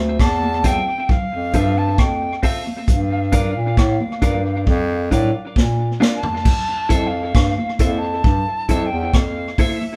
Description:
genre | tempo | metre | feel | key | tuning
roots reggae | 67 BPM | 4/4 | straight | F major | A4 = 439 Hz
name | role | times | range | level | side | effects
mellow bass clarinet | bass | 0.0-9.6 s | D2 to Bb2 | -23 LUFS | equal | none
silver concert flute | melody | 0.2-10.0 s | E5 to A5 | -27 LUFS | equal | none
vintage drum kit | drums | 0.2-9.8 s | crash cymbal, hi-hat, kick drum, rim click, snare drum, toms | -20 LUFS | equal | none
congas | percussion | 0.2-10.0 s | none | -32 LUFS | equal | none
clean electric guitar | accompaniment | 0.6-9.8 s | C4 to E5 | -28 LUFS | equal | tape echo
room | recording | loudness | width
moderate studio reverb, RT60 0.8 s | band playing live in one room | -19 LUFS | mono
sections
0.0-6.5 A section; 6.5-10.0 B section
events
drum fill 5.6-6.5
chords
0.0 Fmaj7; 2.9 Gm7; 6.5 Fmaj7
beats
0.20 1.09 1.99 | 2.88 3.77 4.67 5.56 | 6.46 7.35 8.24 9.14

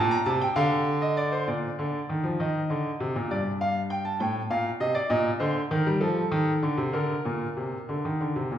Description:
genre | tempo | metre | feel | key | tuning
classical, baroque-style two-part invention for grand piano | 66 BPM (dotted quarters) | 6/8 | straight | Bb major from 5.1 s | A4 = 440 Hz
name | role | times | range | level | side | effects
bright concert grand piano | solo | 0.0-8.6 s | G2 to Bb5 | -24 LUFS | equal | none
room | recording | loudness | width
wet recital hall reverb, RT60 1.4 s | heard from further back in the room | -24 LUFS | side -10 dB against mid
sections
0.0-1.5 A section; 1.5-8.6 B section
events
none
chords
0.0 F (rootless); 0.6 Dm7; 1.5 Bb; 2.4 Bbadd11; 3.3 G5; 4.2 F/A; 5.1 Eb/Bb; 6.0 F7; 6.9 Bb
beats
0.57 | 1.48 2.40 | 3.30 4.20 | 5.10 6.01 | 6.94 7.88

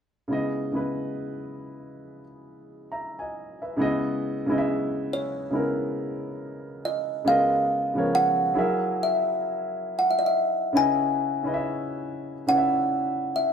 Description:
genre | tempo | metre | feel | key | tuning
R&B | 69 BPM | 4/4 | swing 61% on 16ths | C# dorian | A4 = 440 Hz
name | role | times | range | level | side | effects
warm grand piano | accompaniment | 0.3-13.5 s | C#3 to A#5 | -27 LUFS | equal | none
kalimba | melody | 5.1-13.5 s | C#5 to G#5 | -24 LUFS | equal | none
room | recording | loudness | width
moderate studio reverb, RT60 0.8 s | band playing live in one room | -23 LUFS | side -7 dB against mid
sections
0.3-3.8 A section; 3.8-13.5 B section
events
none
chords
0.3 C#m9; 7.3 C#13; 8.6 F#9; 10.7 C#m9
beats
| 0.30 1.17 2.04 2.91 | 3.78 4.65 5.52 6.39 | 7.26 8.13 8.99 9.87 | 10.73 11.60 12.47 13.34

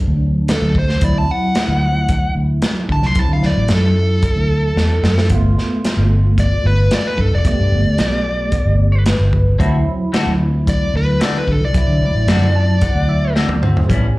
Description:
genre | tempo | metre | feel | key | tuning
straight-eighth soul blues | 112 BPM | 4/4 | straight | D mixolydian | A4 = 440 Hz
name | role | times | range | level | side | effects
bell-like tine electric piano | accompaniment | 0.0-14.2 s | F#3 to A5 | -22 LUFS | right 2 dB | phaser
vintage muted fingered electric bass | bass | 0.1-14.1 s | F1 to D3 | -16 LUFS | equal | none
smooth overdriven lead guitar | melody | 0.5-13.3 s | A4 to C6 | -21 LUFS | equal | slapback echo
crunchy breakbeat drum kit | drums | 0.5-14.0 s | hi-hat, kick drum, snare drum, toms | -19 LUFS | equal | none
clean electric guitar | stabs | 9.6-14.1 s | A2 to F#4 | -22 LUFS | left 4 dB | phaser, slapback echo
room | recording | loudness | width
little or no reverb | live gig heard through the venue's PA, club reverb | -13 LUFS | side -20 dB against mid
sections
0.0-14.2 A section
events
drum fill 4.8-5.3, 13.4-13.9; tine electric piano fill 8.8-9.6, 12.3-13.9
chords
0.0 D7; 5.3 G7; 9.6 D7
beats
0.48 | 1.01 1.55 2.09 2.62 | 3.16 3.70 4.23 4.77 | 5.30 5.84 6.38 6.92 | 7.45 7.99 8.53 9.06 | 9.60 10.14 10.68 11.21 | 11.75 12.29 12.82 13.36 | 13.90

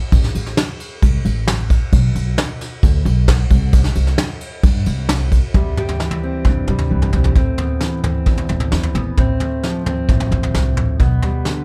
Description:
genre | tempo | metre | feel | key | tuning
indie folk with a building arrangement | 132 BPM | 4/4 | straight | C major | A4 = 441 Hz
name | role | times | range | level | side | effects
upright bass | bass | 0.1-11.2 s | A1 to C3 | -21 LUFS | equal | none
soft brush drum kit | drums | 0.1-11.6 s | kick drum, ride cymbal, snare drum, toms | -19 LUFS | equal | none
fingerpicked steel-string acoustic guitar | accompaniment | 5.5-11.6 s | E2 to G4 | -24 LUFS | equal | none
room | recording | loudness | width
little or no reverb | dark, warm production | -17 LUFS | mono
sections
0.0-5.5 A section; 5.5-7.4 B section; 7.4-11.6 C section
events
none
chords
0.1 N.C.; 3.5 C5; 5.5 C; 7.4 Amadd9; 9.2 F/A; 11.0 G/B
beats
| 0.12 0.57 1.02 1.47 | 1.93 2.38 2.83 3.28 | 3.73 4.18 4.64 5.09 | 5.54 6.00 6.45 6.91 | 7.36 7.81 8.27 8.72 | 9.18 9.63 10.08 10.54 | 10.99 11.45

